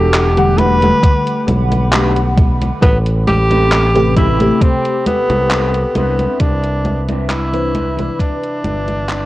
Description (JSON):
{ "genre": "vaporwave", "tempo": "67 BPM", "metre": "4/4", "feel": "straight", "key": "unclear", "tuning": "A4 = 442 Hz", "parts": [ { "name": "warm tenor saxophone", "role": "melody", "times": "0.0-9.3 s", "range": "B3 to B4", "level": "-18 LUFS", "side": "equal", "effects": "vintage 12-bit sampler grit, tape echo" }, { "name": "warbly tape-like pad", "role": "sustained chords", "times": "0.0-9.3 s", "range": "G3 to D6", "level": "-28 LUFS", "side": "right 1 dB", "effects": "chorus, built-in reverb" }, { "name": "mellow electric guitar", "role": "riff", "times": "0.0-9.3 s", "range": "C4 to D5", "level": "-23 LUFS", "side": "right 1 dB", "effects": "wide subtle chorus, vintage 12-bit sampler grit, analog delay" }, { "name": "fingered electric bass", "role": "bass", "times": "0.0-9.3 s", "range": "E1 to C2", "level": "-16 LUFS", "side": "equal", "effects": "tube saturation" }, { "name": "gated 80s digital drum machine", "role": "drums", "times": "0.1-9.3 s", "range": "congas, handclaps, hi-hat", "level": "-20 LUFS", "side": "equal", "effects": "gated reverb" }, { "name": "FM electric piano with soft pad layer", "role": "accompaniment", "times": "0.4-9.3 s", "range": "C3 to F#5", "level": "-19 LUFS", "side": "left 1 dB", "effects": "phaser, lush chorus" }, { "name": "electronic kick drum", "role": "drums", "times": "1.0-8.4 s", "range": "none", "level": "-12 LUFS", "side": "equal", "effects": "none" } ], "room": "little or no reverb", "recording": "worn, warbling old tape, cassette tape, warbly pitch drift", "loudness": "-12 LUFS", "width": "side -17 dB against mid", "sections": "0.0-9.3 A section", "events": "fade-out 4.0-9.3", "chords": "0.0 Em11; 2.8 Am9; 6.0 Cmaj9" }